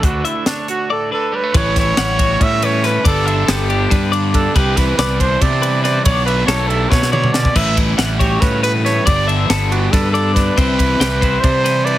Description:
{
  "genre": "math rock and midwest emo",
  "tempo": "279 BPM (eighths)",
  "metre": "7/8",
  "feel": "straight",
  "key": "unclear",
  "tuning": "A4 = 440 Hz",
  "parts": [
    { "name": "warm trumpet", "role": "melody", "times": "0.0-12.0 s", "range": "D4 to E5", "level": "-19 LUFS", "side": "right 2 dB", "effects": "slapback echo, plate reverb" },
    { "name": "twelve-string electric guitar", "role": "accompaniment", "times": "0.0-12.0 s", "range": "D2 to F#4", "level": "-25 LUFS", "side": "right 5 dB", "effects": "plate reverb" },
    { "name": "twelve-string electric guitar", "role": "arpeggios", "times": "0.0-12.0 s", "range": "C4 to G5", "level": "-22 LUFS", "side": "left 7 dB", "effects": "slapback echo, plate reverb" },
    { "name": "fuzz fingered electric bass", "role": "bass", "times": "0.0-12.0 s", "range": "G1 to C3", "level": "-18 LUFS", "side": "equal", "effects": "overdrive" },
    { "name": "crisp fusion drum kit", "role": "drums", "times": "0.0-12.0 s", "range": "crash cymbal, hi-hat, kick drum, ride cymbal, snare drum, toms", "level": "-18 LUFS", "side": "equal", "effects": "none" },
    { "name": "overdriven electric guitar", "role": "riff", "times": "1.5-12.0 s", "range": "G2 to E4", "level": "-24 LUFS", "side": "left 1 dB", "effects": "none" }
  ],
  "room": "light reverb",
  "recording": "heavily compressed radio sound",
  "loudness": "-13 LUFS",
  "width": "side -14 dB against mid",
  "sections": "0.0-1.5 A section; 1.5-12.0 B section",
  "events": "drum fill 6.9-7.6",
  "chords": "0.0 Dmaj9; 1.5 A13; 3.0 Gadd9; 4.6 Cmaj9; 6.1 Bm11; 7.6 A13; 9.1 Gadd9; 10.6 Cmaj9",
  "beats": "| 0.04 0.25 0.47 0.68 0.90 1.11 1.33 | 1.54 1.76 1.97 2.19 2.40 2.62 2.83 | 3.05 3.26 3.48 3.69 3.91 4.12 4.34 | 4.55 4.77 4.98 5.20 5.41 5.63 5.84 | 6.06 6.27 6.49 6.70 6.92 7.13 7.35 | 7.56 7.78 7.99 8.21 8.42 8.64 8.85 | 9.07 9.28 9.50 9.71 9.93 10.14 10.36 | 10.57 10.79 11.00 11.22 11.43 11.65 11.86"
}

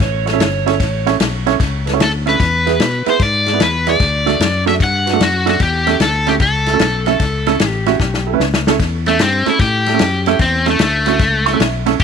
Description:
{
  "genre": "electric blues shuffle",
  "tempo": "150 BPM",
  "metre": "4/4",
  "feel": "swing 66% on 8ths",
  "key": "A mixolydian",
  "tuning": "A4 = 439 Hz",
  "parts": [
    { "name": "overdriven slide guitar", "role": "second line", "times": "0.0-1.1 s", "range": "C#5", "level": "-22 LUFS", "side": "right 10 dB", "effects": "none" },
    { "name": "fingered electric bass", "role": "bass", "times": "0.0-12.0 s", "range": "G1 to B2", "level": "-20 LUFS", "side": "left 2 dB", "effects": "none" },
    { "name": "warm soul drum kit", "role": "drums", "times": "0.0-12.0 s", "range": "kick drum, ride cymbal, snare drum", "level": "-18 LUFS", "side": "left 3 dB", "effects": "none" },
    { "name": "clear upright piano", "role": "accompaniment", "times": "0.3-12.0 s", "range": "A3 to C#6", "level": "-18 LUFS", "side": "right 12 dB", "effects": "none" },
    { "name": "cranked stack guitar", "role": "melody", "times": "2.0-12.0 s", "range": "A3 to F#5", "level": "-16 LUFS", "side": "left 2 dB", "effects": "overdrive" }
  ],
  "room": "small room ambience",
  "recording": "1960s-style stereo",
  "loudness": "-12 LUFS",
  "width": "side -6 dB against mid",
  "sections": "0.0-8.8 A section; 8.8-12.0 B section",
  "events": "drum fill 8.0-8.8; overdriven electric guitar solo 8.8-12.0; upright piano fill 11.2-12.0",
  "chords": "0.0 A; 2.4 E; 4.0 D; 5.6 A",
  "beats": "0.00 0.40 | 0.80 1.20 1.60 2.00 | 2.40 2.80 3.20 3.60 | 4.00 4.40 4.80 5.20 | 5.60 6.00 6.40 6.80 | 7.20 7.60 8.00 8.40 | 8.80 9.20 9.60 10.00 | 10.40 10.80 11.20 11.60 | 12.00"
}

